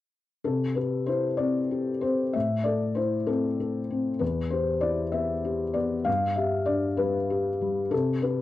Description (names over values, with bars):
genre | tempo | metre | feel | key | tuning
neoclassical minimalist piano | 64 BPM (dotted quarters) | 6/8 | rubato | C major | A4 = 441 Hz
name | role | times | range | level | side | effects
felt-muted upright piano | solo | 0.4-8.4 s | E2 to F5 | -24 LUFS | left 2 dB | cassette tape
room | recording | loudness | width
wet studio ambience, RT60 0.5 s | home recording on cassette | -24 LUFS | side -14 dB against mid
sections
0.4-8.4 A section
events
none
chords
0.4 C; 2.3 Am; 4.2 Em; 6.1 G